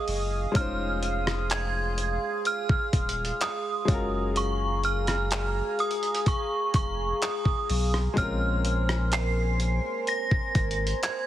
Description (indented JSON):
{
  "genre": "contemporary R&B",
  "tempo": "63 BPM",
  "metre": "4/4",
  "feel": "straight",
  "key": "unclear",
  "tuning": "A4 = 439 Hz",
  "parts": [
    { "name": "synth chime", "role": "melody", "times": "0.0-11.3 s", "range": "Db6 to C7", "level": "-30 LUFS", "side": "right 2 dB", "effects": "ensemble chorus, ping-pong delay" },
    { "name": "clear baby grand piano", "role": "accompaniment", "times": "0.0-11.3 s", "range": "Ab3 to C5", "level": "-34 LUFS", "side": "left 3 dB", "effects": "none" },
    { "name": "chorused pulse-width pad", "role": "sustained chords", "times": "0.0-11.3 s", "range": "Ab4 to Eb6", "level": "-32 LUFS", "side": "right 1 dB", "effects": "none" },
    { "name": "warm sub bass", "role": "bass", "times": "0.1-10.9 s", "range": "Eb1 to Cb2", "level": "-29 LUFS", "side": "equal", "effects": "none" },
    { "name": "dusty soul sampler-style drum kit", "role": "drums", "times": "0.1-11.3 s", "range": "handclaps, hi-hat, kick drum, rim click", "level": "-28 LUFS", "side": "equal", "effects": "none" }
  ],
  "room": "light reverb",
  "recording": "heavily compressed radio sound, multiband compression",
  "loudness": "-24 LUFS",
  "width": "side -12 dB against mid",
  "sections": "0.0-11.3 A section",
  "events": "none",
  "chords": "0.0 Ebm9; 0.6 Dbmaj9/F; 3.9 Gbmaj9; 8.2 Bbm9"
}